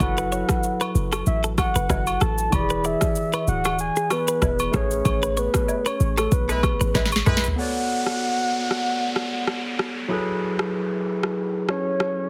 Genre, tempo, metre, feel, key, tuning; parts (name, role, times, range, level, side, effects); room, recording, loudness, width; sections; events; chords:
afrobeats; 95 BPM; 4/4; swing 55% on 16ths; B dorian; A4 = 436 Hz
soft octave-layered synth lead; melody; 0.0-12.3 s; A4 to B5; -28 LUFS; equal; chorus, digital delay
barky tine electric piano; accompaniment; 0.0-12.3 s; E3 to D5; -30 LUFS; equal; overdrive, subtle chorus
short 808-style bass; bass; 0.0-7.5 s; D1 to B1; -27 LUFS; equal
afro-pop drum kit; drums; 0.0-12.2 s; kick drum, rim click, shaker, snare drum, toms; -27 LUFS; equal
agogo bells and woodblock; percussion; 0.0-7.3 s; -34 LUFS; equal
direct-recorded clean electric guitar; riff; 0.2-7.4 s; G#4 to D5; -32 LUFS; equal; digital delay
clear horn section; second line; 6.5-7.5 s; G#3 to B4; -31 LUFS; equal
downlifter; sound effects; 7.6-12.3 s; -34 LUFS; equal
light reverb; heavily compressed radio sound, multiband compression; -23 LUFS; mono
0.0-7.6 A section; 7.6-12.3 B section
band accent 5.1-7.6; drum fill 6.9-7.6
0.0 F#m7; 2.5 E7; 4.7 Amaj9; 7.6 Bm9; 10.1 F#m11